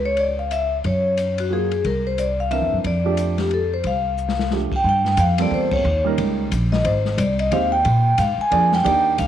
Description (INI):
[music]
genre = jazz, small-group swing and bop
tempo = 180 BPM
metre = 3/4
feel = swing 62% on 8ths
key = unclear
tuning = A4 = 440 Hz
[part]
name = vibraphone with medium mallets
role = melody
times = 0.0-9.3 s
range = Gb4 to Ab5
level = -20 LUFS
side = left 1 dB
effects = none
[part]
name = upright bass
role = bass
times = 0.0-9.3 s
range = Ab1 to Bb2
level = -22 LUFS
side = equal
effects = none
[part]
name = open jazz drum kit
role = drums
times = 0.2-9.3 s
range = crash cymbal, hi-hat, kick drum, ride cymbal, snare drum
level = -30 LUFS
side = left 4 dB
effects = none
[part]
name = warm baby grand piano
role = accompaniment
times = 1.5-9.3 s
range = E3 to D5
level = -25 LUFS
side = right 12 dB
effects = none
[sound]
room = light reverb, small room ambience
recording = 1960s-style stereo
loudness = -17 LUFS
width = side -10 dB against mid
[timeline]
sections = 0.0-4.8 A section; 4.8-9.3 B section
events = drum fill 4.2-4.5; band accent 5.7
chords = 0.0 Dbm; 0.8 Gbmaj9; 1.8 C9; 2.8 F69; 4.8 Gm11; 5.8 Eb7; 6.8 Abmaj7; 7.8 Bb7